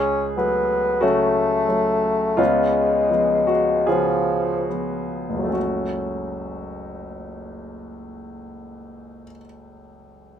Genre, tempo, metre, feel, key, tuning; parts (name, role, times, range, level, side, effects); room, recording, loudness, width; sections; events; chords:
classical, romantic duo for bassoon and grand piano; 35-46 BPM; 4/4; rubato; F# minor; A4 = 439 Hz
warm bassoon; melody; 0.0-4.7 s; E#3 to C#4; -20 LUFS; left 2 dB
clear grand piano; accompaniment; 0.0-10.4 s; F#1 to G#4; -23 LUFS; equal
light reverb; minimal, uncompressed stereo recording; -18 LUFS; side -9 dB against mid
0.0-5.6 A section; 5.6-10.4 B section
slowing down 0.0-5.6
0.0 F#m/C#; 2.4 C#7; 5.6 F#m